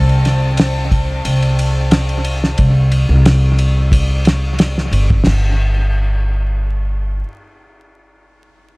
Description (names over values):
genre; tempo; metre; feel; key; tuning
trip hop; 90 BPM; 4/4; straight; unclear; A4 = 444 Hz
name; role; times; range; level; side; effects
bright chamber violin section; sustained chords; 0.0-2.6 s; C4 to A5; -25 LUFS; left 1 dB; none
upright bass; bass; 0.0-7.2 s; G1 to C2; -14 LUFS; equal; none
cloth-damped thuddy drum kit; drums; 0.1-5.4 s; crash cymbal, kick drum, ride cymbal, snare drum, toms; -17 LUFS; equal; dub echo
room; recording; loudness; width
small room ambience; echo-heavy mix, vinyl crackle, faint mains hum; -12 LUFS; side -27 dB against mid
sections
0.0-5.3 A section; 5.3-7.9 B section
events
none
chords
0.0 C5; 5.3 N.C.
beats
0.58 1.25 1.92 | 2.58 3.25 3.92 4.58 | 5.25 5.92 6.58